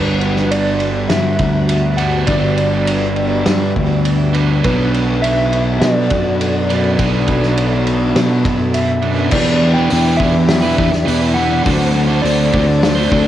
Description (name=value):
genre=rock, shoegaze and dream pop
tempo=102 BPM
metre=4/4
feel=straight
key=G major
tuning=A4 = 440 Hz
part: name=soft struck synth lead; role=melody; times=0.0-13.3 s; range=B4 to G5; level=-21 LUFS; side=equal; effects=chorus, tremolo, cassette tape, tape echo
part: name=ensemble organ-string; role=sustained chords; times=0.0-13.3 s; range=B3 to F#5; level=-23 LUFS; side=equal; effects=ensemble chorus
part: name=crunchy overdriven guitar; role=riff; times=0.0-13.3 s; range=G2 to C5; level=-20 LUFS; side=right 7 dB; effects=reverse reverb
part: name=fuzz guitar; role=riff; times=0.0-13.3 s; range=E2 to D4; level=-21 LUFS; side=left 6 dB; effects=distortion, lush chorus
part: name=fuzz fingered electric bass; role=bass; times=0.0-13.3 s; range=G1 to B2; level=-18 LUFS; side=equal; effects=overdrive
part: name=loose indie drum kit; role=drums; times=0.2-13.3 s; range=crash cymbal, hi-hat, kick drum, ride cymbal, snare drum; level=-21 LUFS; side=equal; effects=cassette tape
room=light reverb, small room ambience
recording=home recording on cassette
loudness=-12 LUFS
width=side -12 dB against mid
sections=0.0-9.3 A section; 9.3-13.3 B section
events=none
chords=0.0 Gmaj7; 4.6 Bm7; 9.3 Em7; 11.7 D7